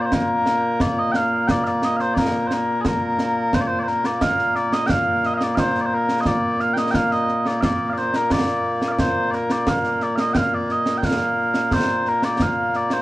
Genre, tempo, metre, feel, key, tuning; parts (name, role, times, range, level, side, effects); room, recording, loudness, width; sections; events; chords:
scottish traditional, Scottish pipe music; 88 BPM; 2/4; straight; Bb major; A4 = 440 Hz
mellow small bagpipes; melody; 0.0-13.0 s; Bb2 to G5; -19 LUFS; equal
concert snare drum and concert bass drum; drums; 0.1-13.0 s; -24 LUFS; right 1 dB
light reverb; worn, warbling old tape, cassette tape, warbly pitch drift; -18 LUFS; side -17 dB against mid
0.0-3.5 A section; 3.5-13.0 B section